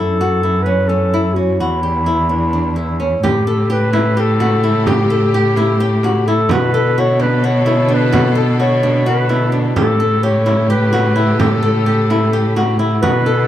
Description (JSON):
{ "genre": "contemporary instrumental, chamber music in an uneven meter", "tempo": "257 BPM (eighths)", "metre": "7/8", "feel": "straight", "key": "unclear", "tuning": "A4 = 440 Hz", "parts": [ { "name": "dark clarinet", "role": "melody", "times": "0.0-13.5 s", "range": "E4 to C#5", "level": "-18 LUFS", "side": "left 2 dB", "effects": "analog delay" }, { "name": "flamenco guitar", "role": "arpeggios", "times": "0.0-13.5 s", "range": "C#4 to A4", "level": "-19 LUFS", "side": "left 1 dB", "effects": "analog delay" }, { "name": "dark cello", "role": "bass", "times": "0.0-13.5 s", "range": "E2 to B2", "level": "-16 LUFS", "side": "equal", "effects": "none" }, { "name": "rich studio string section", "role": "sustained chords", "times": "3.2-13.5 s", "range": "C#3 to A4", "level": "-23 LUFS", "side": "left 1 dB", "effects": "none" }, { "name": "frame drum", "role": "percussion", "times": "3.2-13.3 s", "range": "none", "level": "-22 LUFS", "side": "right 4 dB", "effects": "none" } ], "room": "moderate studio reverb, RT60 0.6 s", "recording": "dark, warm production", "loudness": "-12 LUFS", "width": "side -12 dB against mid", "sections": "0.0-3.2 A section; 3.2-13.5 B section", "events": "none", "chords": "0.0 F#m7; 1.6 Em9; 3.2 A7; 6.5 Bm7; 9.8 A7" }